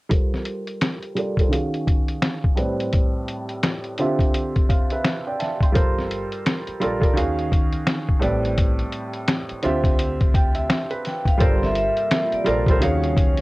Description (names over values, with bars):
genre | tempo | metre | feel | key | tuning
lo-fi hip hop | 85 BPM | 4/4 | swing 60% on 16ths | unclear | A4 = 440 Hz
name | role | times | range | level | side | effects
felt-muted upright piano | accompaniment | 0.1-13.4 s | A2 to C6 | -24 LUFS | right 1 dB | cassette tape, low-pass filter, plate reverb
lo-fi sampler-style drum kit | drums | 0.1-13.4 s | finger snaps, hi-hat, kick drum, snare drum | -20 LUFS | equal | cassette tape
upright bass | bass | 5.8-13.4 s | F#1 to Eb2 | -28 LUFS | equal | none
vibraphone with hard mallets | melody | 11.1-13.4 s | C5 to G5 | -24 LUFS | equal | none
deep dark ambient pad | sustained chords | 11.9-13.4 s | C3 to F4 | -33 LUFS | equal | none
room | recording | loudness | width
moderate booth ambience, RT60 0.2 s | home recording on cassette | -19 LUFS | side -21 dB against mid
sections
0.1-11.4 A section; 11.4-13.4 B section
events
filter sweep on felt piano 0.1-11.4; felt piano fill 10.0-11.4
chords
0.1 Gm11; 1.5 Ebm11; 2.6 Am11; 4.0 Dm11; 5.8 Gm11; 7.2 Ebm11; 8.2 Am11; 9.6 Dm11; 11.4 Gm11; 12.8 Ebm11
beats
| 0.11 0.82 1.52 2.23 | 2.93 3.64 4.35 5.05 | 5.76 6.46 7.17 7.88 | 8.58 9.29 9.99 10.70 | 11.40 12.11 12.82